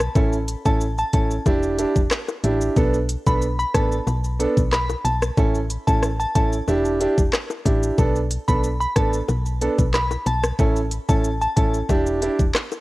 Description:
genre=dancehall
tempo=92 BPM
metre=4/4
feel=straight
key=B minor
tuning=A4 = 440 Hz
part: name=solid FM bass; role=bass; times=0.0-12.5 s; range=E1 to B1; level=-24 LUFS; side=equal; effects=none
part: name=island pop drum kit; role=drums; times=0.0-12.8 s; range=handclaps, hi-hat, kick drum, rim click, shaker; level=-21 LUFS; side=equal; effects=overdrive
part: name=clear baby grand piano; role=accompaniment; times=0.2-12.4 s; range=B3 to A4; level=-23 LUFS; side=right 2 dB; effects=cassette tape
part: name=bongos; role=percussion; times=0.2-12.8 s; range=none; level=-31 LUFS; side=left 6 dB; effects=none
part: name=glassy synth bell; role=melody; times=0.7-11.7 s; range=A5 to B5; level=-27 LUFS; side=equal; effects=chorus, tremolo, cassette tape, tape echo
room=digital ambience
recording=home recording on cassette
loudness=-18 LUFS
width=side -19 dB against mid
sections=0.0-12.8 A section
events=none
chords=0.2 A; 1.5 Em7; 2.8 Bm7; 5.4 A; 6.7 Em7; 8.0 Bm7; 10.6 A; 11.9 Em7

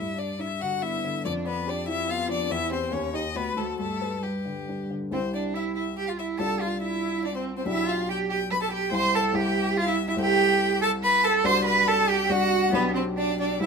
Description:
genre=quick classical-period movement for piano trio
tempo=141 BPM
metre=3/4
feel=rubato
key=G major, C major from 5.1 s, G major from 10.2 s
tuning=A4 = 440 Hz
part: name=clear violin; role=melody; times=0.0-13.7 s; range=G4 to C6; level=-29 LUFS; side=left 8 dB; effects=none
part: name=rich cello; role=second line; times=0.0-13.7 s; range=G3 to C5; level=-26 LUFS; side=right 6 dB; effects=none
part: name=dark baby grand piano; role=accompaniment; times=0.0-13.7 s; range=B1 to Eb5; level=-29 LUFS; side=left 2 dB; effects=none
room=moderate studio reverb, RT60 0.9 s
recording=minimal, uncompressed stereo recording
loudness=-23 LUFS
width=side -5 dB against mid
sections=0.0-5.1 A section; 5.1-13.7 B section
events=none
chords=0.0 G; 1.3 G7/F; 2.5 C/E; 2.9 Eb7; 3.4 D7; 3.8 G; 5.1 C; 6.4 Dm7/C; 7.7 G/B; 8.9 C; 10.2 Am7/C; 11.5 D7/C; 12.7 G/B

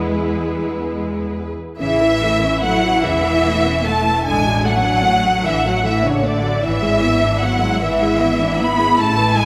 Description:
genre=classical, slow romantic movement for string orchestra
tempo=50 BPM (dotted quarters)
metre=6/8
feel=uneven beats, rubato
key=A major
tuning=A4 = 439 Hz
part: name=warm studio violin section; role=melody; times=0.0-9.5 s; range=B4 to B5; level=-22 LUFS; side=equal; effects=none
part: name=rich studio violin section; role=second line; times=0.0-9.5 s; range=B3 to B5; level=-25 LUFS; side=equal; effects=none
part: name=dark studio viola section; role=accompaniment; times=0.0-9.5 s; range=C#3 to G#4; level=-24 LUFS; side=equal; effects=none
part: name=clear symphonic cello section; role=bass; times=0.0-9.5 s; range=C#3 to B3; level=-25 LUFS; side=equal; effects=none
part: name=rich studio double bass section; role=bass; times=0.0-9.5 s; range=E1 to E2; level=-26 LUFS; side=equal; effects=none
room=wet cathedral reverb, RT60 5.4 s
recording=in a vast, echoing space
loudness=-17 LUFS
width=mono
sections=0.0-1.8 A section; 1.8-9.5 B section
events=none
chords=0.0 E; 1.8 A; 4.3 D/A; 6.6 E7/G#

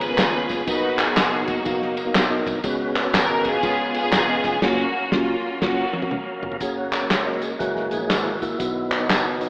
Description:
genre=uptempo gospel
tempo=121 BPM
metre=4/4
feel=swing 64% on 8ths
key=F# major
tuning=A4 = 441 Hz
part: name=clear studio string section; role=melody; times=0.0-6.6 s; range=A#3 to B4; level=-24 LUFS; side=equal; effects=slapback echo
part: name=mellow tine electric piano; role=accompaniment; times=0.0-9.5 s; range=B2 to F#5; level=-26 LUFS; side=equal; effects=medium stereo tremolo
part: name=percussive tonewheel organ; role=sustained chords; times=0.0-9.5 s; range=B2 to E#5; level=-28 LUFS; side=equal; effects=slow rotary speaker, chorus vibrato
part: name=fingered electric bass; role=bass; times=0.0-9.5 s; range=E1 to D#2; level=-36 LUFS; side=equal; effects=none
part: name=warm soul drum kit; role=drums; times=0.0-9.5 s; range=crash cymbal, hi-hat, kick drum, ride cymbal, snare drum, toms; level=-26 LUFS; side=equal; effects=none
part: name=tambourine and handclaps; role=percussion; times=0.0-9.5 s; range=none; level=-24 LUFS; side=equal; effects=none
room=wet lush hall reverb, RT60 2.5 s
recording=rough home demo mix, AM radio sound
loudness=-19 LUFS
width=side -31 dB against mid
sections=0.0-6.6 A section; 6.6-9.5 B section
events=band accent 4.6-6.6; drum fill 5.6-6.6; tonewheel organ solo 6.6-9.5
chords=0.0 C#7; 0.7 Bmaj7; 2.6 C#7sus4; 3.6 C#7; 4.6 F#maj7; 6.6 F#; 7.6 F#7; 8.6 B

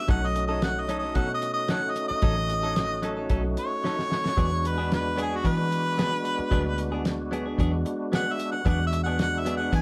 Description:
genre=straight-eighth soul blues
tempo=112 BPM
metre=4/4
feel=swing 53% on 16ths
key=unclear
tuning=A4 = 440 Hz
part: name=clear harmonica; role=melody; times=0.0-9.8 s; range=F#4 to G#5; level=-31 LUFS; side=equal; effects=overdrive
part: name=percussive tonewheel organ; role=accompaniment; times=0.0-9.8 s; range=G#3 to F#4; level=-34 LUFS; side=equal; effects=overdrive, chorus vibrato, slow rotary speaker
part: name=direct-recorded clean electric guitar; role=stabs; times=0.1-9.8 s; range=F#3 to A4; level=-35 LUFS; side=equal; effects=none
part: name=vintage muted fingered electric bass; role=bass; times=0.1-9.8 s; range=A1 to E3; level=-32 LUFS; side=equal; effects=none
part: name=cloth-damped thuddy drum kit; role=drums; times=0.1-9.8 s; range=hi-hat, kick drum, snare drum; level=-30 LUFS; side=equal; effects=none
room=moderate studio ambience, RT60 0.5 s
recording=band playing live in one room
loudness=-26 LUFS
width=mono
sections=0.0-9.8 A section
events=harmonica solo 0.0-9.8; drum fill 3.8-4.4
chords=0.1 B9; 4.4 E9

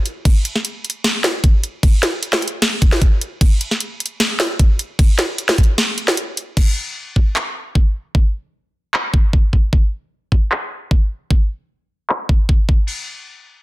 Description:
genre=future bass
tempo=152 BPM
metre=4/4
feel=half-time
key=none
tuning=none
part: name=trap drum kit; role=drums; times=0.1-12.8 s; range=crash cymbal, handclaps, hi-hat, snare drum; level=-19 LUFS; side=equal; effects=low-pass filter on snare, low-pass filter on hats, low-pass filter on cymbals
part: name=electronic kick drum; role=drums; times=0.3-12.8 s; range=none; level=-13 LUFS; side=equal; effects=none
room=digital ambience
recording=dense, heavily limited modern master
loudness=-15 LUFS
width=side -18 dB against mid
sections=0.0-6.6 A section; 6.6-12.9 B section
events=drop 0.0-6.6; break 5.8-6.6; filter sweep on drum 6.6-12.9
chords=none

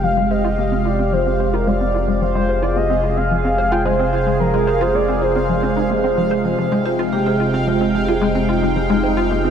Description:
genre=ambient, sequencer-driven space music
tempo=110 BPM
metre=4/4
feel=straight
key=F dorian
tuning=A4 = 440 Hz
part: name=mellow horn-like synth lead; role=melody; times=0.0-6.5 s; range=Bb4 to G5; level=-22 LUFS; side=equal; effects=chorus, phaser, analog delay
part: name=phased analog pad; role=sustained chords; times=0.0-9.5 s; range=C3 to G5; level=-20 LUFS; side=right 1 dB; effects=phaser, chorus
part: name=hollow square pluck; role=riff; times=0.0-9.5 s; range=F3 to C5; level=-23 LUFS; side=left 1 dB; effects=lush chorus, analog delay
part: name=warm sub bass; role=bass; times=0.0-9.5 s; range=F1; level=-24 LUFS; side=equal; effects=none
part: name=bubbling stepped-filter texture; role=texture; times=0.0-9.5 s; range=F5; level=-28 LUFS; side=left 1 dB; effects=chorus, built-in reverb
part: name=vibraphone with soft mallets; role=arpeggios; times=6.7-9.4 s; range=F4 to C5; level=-23 LUFS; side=moving between left 1 dB and right 6 dB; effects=auto-pan, analog delay
room=wet huge ambient reverb, RT60 7.0 s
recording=none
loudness=-15 LUFS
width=side -8 dB against mid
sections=0.0-9.5 A section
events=filter sweep on synth arpeggio sound 0.0-9.5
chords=0.0 Fmadd9

